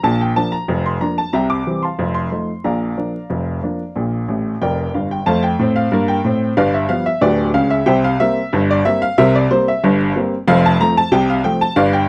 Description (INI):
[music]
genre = ragtime piano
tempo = 92 BPM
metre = 2/4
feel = straight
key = Bb major, F major from 5.3 s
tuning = A4 = 440 Hz
[part]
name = clear upright piano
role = solo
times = 0.0-12.1 s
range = D1 to D6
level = -14 LUFS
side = equal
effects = none
[sound]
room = light reverb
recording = dry, close 1970s-style studio recording, vinyl crackle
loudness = -14 LUFS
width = side -27 dB against mid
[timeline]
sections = 0.0-5.3 A section; 5.3-12.1 B section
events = upright piano fill 4.3-5.3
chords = 0.0 Bb; 1.3 C; 2.0 F7; 2.6 Bb; 5.3 F; 6.6 G7; 7.9 C7; 10.5 F